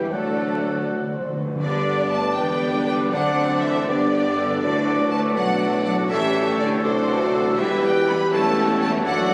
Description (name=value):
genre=classical, dramatic, fast romantic movement for symphony orchestra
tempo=80 BPM (dotted quarters)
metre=6/8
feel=straight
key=G major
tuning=A4 = 440 Hz
part: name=warm symphonic violin section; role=melody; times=0.0-9.3 s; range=C5 to B5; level=-32 LUFS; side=equal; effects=none
part: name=dark clarinet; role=second line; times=0.0-9.3 s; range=G4 to D5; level=-31 LUFS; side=equal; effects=none
part: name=small flute group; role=second line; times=0.0-9.3 s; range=G4 to B5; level=-34 LUFS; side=equal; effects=none
part: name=warm oboe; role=second line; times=0.0-9.3 s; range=B4 to G5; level=-34 LUFS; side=equal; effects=none
part: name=dark bassoon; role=accompaniment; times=0.0-9.3 s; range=E3 to C4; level=-32 LUFS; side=equal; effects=none
part: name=rich symphonic viola section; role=accompaniment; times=0.0-9.3 s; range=E3 to A4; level=-32 LUFS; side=equal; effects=none
part: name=dark trombone section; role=sustained chords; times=0.0-9.3 s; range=A2 to C4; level=-33 LUFS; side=equal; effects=none
part: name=mellow French horn section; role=sustained chords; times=0.0-9.3 s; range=B3 to D5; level=-31 LUFS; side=equal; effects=none
part: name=concert harp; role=arpeggios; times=0.0-9.3 s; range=F#2 to A4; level=-36 LUFS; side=equal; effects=none
part: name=rich studio double bass section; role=bass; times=0.0-9.3 s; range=A1 to G2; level=-38 LUFS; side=equal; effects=none
part: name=rich symphonic cello section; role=bass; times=0.0-9.3 s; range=C3 to B3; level=-32 LUFS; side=equal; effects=none
part: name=warm tuba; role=bass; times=0.0-9.3 s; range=E1 to D2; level=-33 LUFS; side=equal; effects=none
part: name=rich chamber violin section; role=second line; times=0.1-9.3 s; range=F#4 to D5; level=-33 LUFS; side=equal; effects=none
part: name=timpani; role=percussion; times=0.1-5.3 s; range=D3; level=-35 LUFS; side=equal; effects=none
part: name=bright trumpet section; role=stabs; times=1.6-9.3 s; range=A4 to D5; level=-30 LUFS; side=equal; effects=none
room=moderate scoring stage reverb, RT60 2.2 s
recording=recorded on a phone in the room, club reverb, vinyl crackle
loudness=-21 LUFS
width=mono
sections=0.0-1.6 A section; 1.6-9.3 B section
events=timpani fill 0.1-1.6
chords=0.1 D; 1.6 G; 3.1 D7; 3.9 G; 4.6 D; 6.1 A7; 6.8 D; 7.6 Em; 8.3 A7/E